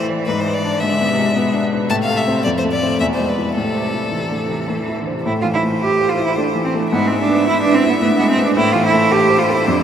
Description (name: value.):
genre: quick classical-period movement for piano trio.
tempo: 109 BPM.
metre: 3/4.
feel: straight.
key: A minor.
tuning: A4 = 441 Hz.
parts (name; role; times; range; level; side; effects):
clear violin; melody; 0.0-9.8 s; A4 to A5; -22 LUFS; left 3 dB; none.
rich cello; second line; 0.0-9.8 s; A2 to G4; -18 LUFS; right 3 dB; none.
clear baby grand piano; accompaniment; 0.0-9.8 s; E2 to D5; -18 LUFS; left 2 dB; none.
room: wet huge ambient reverb, RT60 7.0 s.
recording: in a vast, echoing space.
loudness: -14 LUFS.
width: side -8 dB against mid.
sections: 0.0-5.3 A section; 5.3-9.8 B section.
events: none.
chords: 0.3 E7/G#; 1.9 Am; 2.4 F; 3.0 E7; 3.6 Am; 6.9 E/G#; 8.6 Am.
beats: | 0.27 0.82 1.36 | 1.90 2.45 3.00 | 3.57 4.13 4.70 | 5.27 5.83 6.38 | 6.92 7.47 8.02 | 8.56 9.11 9.67.